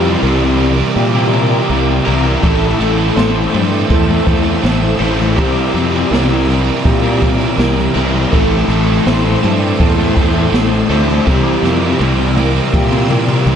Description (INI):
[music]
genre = rock, shoegaze and dream pop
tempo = 82 BPM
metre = 4/4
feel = straight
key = C mixolydian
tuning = A4 = 441 Hz
[part]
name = string machine, violins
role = sustained chords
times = 0.0-13.6 s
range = A4 to E6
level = -25 LUFS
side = equal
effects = ensemble chorus
[part]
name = electric guitar through a small old amp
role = arpeggios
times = 0.0-13.6 s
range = G4 to C5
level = -21 LUFS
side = equal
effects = analog chorus, analog delay
[part]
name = cranked stack guitar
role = riff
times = 0.0-13.6 s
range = A2 to Bb4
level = -20 LUFS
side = equal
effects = overdrive
[part]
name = overdriven electric guitar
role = riff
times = 0.0-13.6 s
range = A2 to Bb4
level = -18 LUFS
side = right 7 dB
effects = reverse reverb
[part]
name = thick fuzz guitar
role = riff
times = 0.0-13.6 s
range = A2 to C4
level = -19 LUFS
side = left 8 dB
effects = distortion, wide subtle chorus
[part]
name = fuzz fingered electric bass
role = bass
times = 0.0-13.6 s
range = A1 to Bb2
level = -16 LUFS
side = equal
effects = overdrive
[part]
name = jazz brush drum kit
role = drums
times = 2.4-13.6 s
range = hi-hat, kick drum, snare drum, toms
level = -17 LUFS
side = equal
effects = none
[sound]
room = moderate plate reverb, RT60 3.3 s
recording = dreamy mix soaked in reverb, nothing above 10.7 kHz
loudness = -11 LUFS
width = side -8 dB against mid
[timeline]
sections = 0.0-13.6 A section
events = drum fill 11.3-13.6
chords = 0.0 C9; 2.4 Am7; 5.4 C9; 8.3 Am7; 11.3 C9